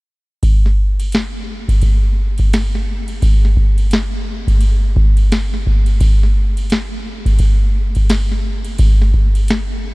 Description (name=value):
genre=hip hop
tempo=86 BPM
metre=4/4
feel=swing 61% on 16ths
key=none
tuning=none
part: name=booming analog drum machine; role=drums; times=0.4-9.7 s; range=hi-hat, kick drum, ride cymbal, snare drum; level=-13 LUFS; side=equal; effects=none
room=little or no reverb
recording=none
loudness=-13 LUFS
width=side -23 dB against mid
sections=0.4-9.9 A section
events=none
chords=none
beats=| 0.43 1.12 1.82 2.52 | 3.22 3.91 4.61 5.31 | 6.01 6.71 7.40 8.10 | 8.80 9.50